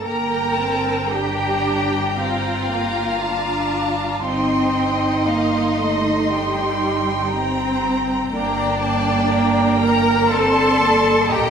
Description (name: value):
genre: classical, slow romantic movement for string orchestra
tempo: 56-61 BPM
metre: 4/4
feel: rubato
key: G minor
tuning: A4 = 440 Hz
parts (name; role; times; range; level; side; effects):
- rich studio violin section; second line; 0.0-11.5 s; D5 to C6; -23 LUFS; right 1 dB; none
- rich studio violin section; melody; 0.1-11.5 s; D5 to Bb5; -25 LUFS; left 3 dB; none
- warm studio viola section; accompaniment; 0.1-11.5 s; G3 to D4; -22 LUFS; right 1 dB; none
- rich studio cello section; bass; 0.1-11.5 s; D4 to Bb4; -22 LUFS; equal; none
- rich studio double bass section; bass; 0.1-11.5 s; G1 to Bb1; -27 LUFS; right 2 dB; none
room: wet recital hall reverb, RT60 1.7 s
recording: recorded in a church or concert hall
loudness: -17 LUFS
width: side -7 dB against mid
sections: 0.1-11.5 A section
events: none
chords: 0.1 Gm; 4.2 Cm/G; 8.3 Gm